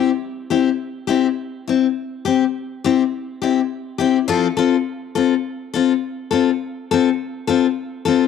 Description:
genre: highlife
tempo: 103 BPM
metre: 4/4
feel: straight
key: C major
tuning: A4 = 440 Hz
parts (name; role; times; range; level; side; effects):
- picked steel-string acoustic guitar; solo; 0.0-8.3 s; F3 to A4; -17 LUFS; left 8 dB; none
room: moderate spring reverb, RT60 1.9 s, studio reverb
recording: none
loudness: -17 LUFS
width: side -6 dB against mid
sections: 0.0-8.3 A section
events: none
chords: 0.0 C; 4.3 F

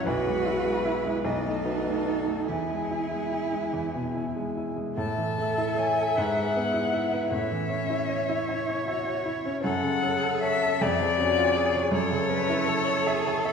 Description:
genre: classical, slow romantic movement for piano quartet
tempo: 47-54 BPM (dotted quarters)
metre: 6/8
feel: rubato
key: E major, A major from 5.0 s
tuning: A4 = 439 Hz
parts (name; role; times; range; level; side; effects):
- rich violin; melody; 0.0-13.5 s; C#5 to B5; -29 LUFS; left 5 dB; none
- rich cello; second line; 0.0-13.5 s; C#4 to B4; -32 LUFS; right 4 dB; none
- rich violin; second line; 0.0-13.5 s; G#4 to E5; -32 LUFS; left 1 dB; none
- warm baby grand piano; accompaniment; 0.0-13.5 s; B1 to C#6; -28 LUFS; equal; none
room: wet concert hall reverb, RT60 2.4 s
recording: heard from further back in the room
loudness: -24 LUFS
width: side -6 dB against mid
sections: 0.0-5.0 A section; 5.0-13.5 B section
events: none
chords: 0.1 E/B; 1.3 B7; 2.5 E; 5.0 A; 6.2 E/G#; 7.3 A; 9.6 F#m; 10.8 C#/E#; 11.9 F#m7

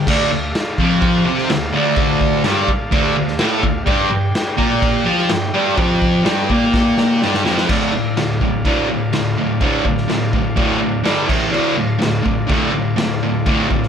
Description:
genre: garage rock duo or trio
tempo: 126 BPM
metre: 4/4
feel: straight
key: D minor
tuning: A4 = 439 Hz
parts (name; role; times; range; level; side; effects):
- combo organ; sustained chords; 0.0-13.9 s; F4 to G5; -27 LUFS; left 3 dB; spring reverb
- fuzz guitar; riff; 0.0-13.9 s; D2 to F4; -16 LUFS; equal; distortion
- raw garage drum kit; drums; 0.1-13.9 s; crash cymbal, kick drum, snare drum; -20 LUFS; equal; none
room: light reverb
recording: none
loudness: -14 LUFS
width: side -8 dB against mid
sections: 0.1-7.7 A section; 7.7-13.9 B section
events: drum fill 6.7-7.7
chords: 0.1 Dm; 3.9 G5; 7.7 Dm; 11.1 G5; 11.3 A5; 11.5 Dm

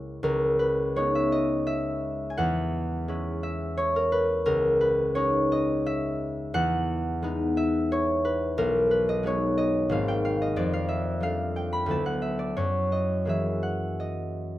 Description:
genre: classical, solo harp piece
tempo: 74-93 BPM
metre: 3/4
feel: rubato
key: C# dorian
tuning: A4 = 440 Hz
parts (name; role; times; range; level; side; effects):
- concert harp; solo; 0.0-14.6 s; G#1 to B5; -24 LUFS; equal; none
room: light reverb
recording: none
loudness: -24 LUFS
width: side -14 dB against mid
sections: 0.2-14.6 A section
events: none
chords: 0.2 C#m9; 2.4 E69; 4.5 C#madd9; 6.5 Emaj9; 8.6 B69; 9.9 G#69; 10.6 F69; 11.9 D69; 12.6 F#9

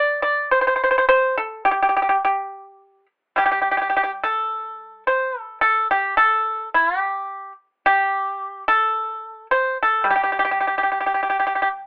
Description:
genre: chinese traditional, Chinese solo plucked strings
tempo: 53 BPM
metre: 2/4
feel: rubato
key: unclear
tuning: A4 = 439 Hz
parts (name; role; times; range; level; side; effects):
- pipa; solo; 0.0-11.9 s; G3 to D5; -17 LUFS; equal; none
room: light reverb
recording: telephone sound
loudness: -17 LUFS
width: side -35 dB against mid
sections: 0.0-11.9 A section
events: none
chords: none

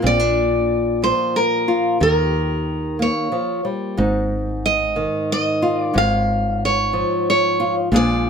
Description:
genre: folk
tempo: 91 BPM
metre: 3/4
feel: straight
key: unclear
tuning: A4 = 440 Hz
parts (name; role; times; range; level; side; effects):
- nylon-string guitar; accompaniment; 0.0-8.3 s; Ab2 to Ab4; -21 LUFS; left 1 dB; none
- woody fretless electric bass; bass; 0.0-8.3 s; Ab1 to Eb2; -23 LUFS; right 1 dB; none
- picked steel-string acoustic guitar; melody; 0.1-8.3 s; Bb4 to F5; -19 LUFS; right 1 dB; none
room: light reverb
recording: none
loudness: -17 LUFS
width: side -6 dB against mid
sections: 0.0-8.3 A section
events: none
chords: 0.0 Bb; 2.0 Eb7; 4.0 Ab5; 6.0 Db/Ab

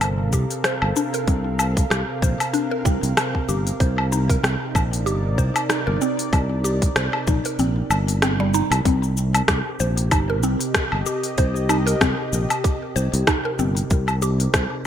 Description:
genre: organic downtempo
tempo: 95 BPM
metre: 4/4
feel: swing 56% on 16ths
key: unclear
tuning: A4 = 437 Hz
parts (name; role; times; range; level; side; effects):
- warm analog pad; sustained chords; 0.0-14.9 s; C3 to F5; -28 LUFS; equal; chorus, sidechain pumping
- mallet-like synth pluck; arpeggios; 0.0-14.7 s; G3 to C5; -26 LUFS; equal; chorus, phaser, ping-pong delay
- sustaining fretless electric bass; bass; 0.0-14.7 s; G1 to C2; -22 LUFS; equal; none
- afro-pop drum kit; drums; 0.0-14.7 s; cabasa, hi-hat, rim click, woodblock; -24 LUFS; left 1 dB; gated reverb
- electronic kick drum; drums; 0.3-14.7 s; none; -22 LUFS; equal; none
room: moderate plate reverb, RT60 2.1 s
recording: bright 1980s-style digital production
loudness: -18 LUFS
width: side -10 dB against mid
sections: 0.0-8.9 A section; 8.9-14.9 B section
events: kick drops out 7.6-8.9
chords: 0.0 Gm7; 3.8 Cm7; 8.9 Eb6/G; 13.9 Cm7

